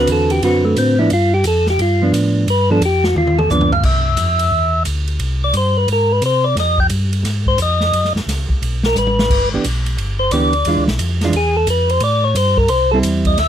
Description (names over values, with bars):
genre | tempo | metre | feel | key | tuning
soul jazz organ trio | 176 BPM | 4/4 | swing 64% on 8ths | G mixolydian | A4 = 435 Hz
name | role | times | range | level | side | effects
percussive tonewheel organ | melody | 0.0-13.5 s | A3 to G5 | -16 LUFS | left 1 dB | slow rotary speaker
hollow-body jazz guitar | accompaniment | 0.0-3.7, 9.5-13.4 s | D3 to B4 | -17 LUFS | right 3 dB | none
mellow tonewheel organ | bass | 0.0-13.5 s | G1 to C3 | -18 LUFS | equal | slow rotary speaker
swinging big-band drum kit | drums | 0.1-13.5 s | crash cymbal, hi-hat, kick drum, ride cymbal, snare drum, toms | -22 LUFS | equal | none
room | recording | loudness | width
light reverb | vinyl crackle | -13 LUFS | side -10 dB against mid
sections
0.0-3.8 A section; 3.8-13.5 A section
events
tonewheel organ solo 0.0-13.5; drum fill 3.2-3.8, 9.0-9.3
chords
0.0 D13; 1.1 G7; 3.8 Cadd9; 5.2 C5; 6.6 Fm9; 7.9 F#5; 8.6 Asus2; 9.3 Em7; 10.7 E7b9; 12.0 Am7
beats
0.09 0.43 0.77 | 1.11 1.45 1.79 2.14 | 2.48 2.82 3.16 3.50 | 3.84 4.18 4.53 4.87 | 5.21 5.55 5.89 6.23 | 6.57 6.91 7.25 7.60 | 7.94 8.28 8.62 8.96 | 9.30 9.64 9.98 10.32 | 10.66 11.01 11.35 11.69 | 12.03 12.37 12.71 13.05 | 13.39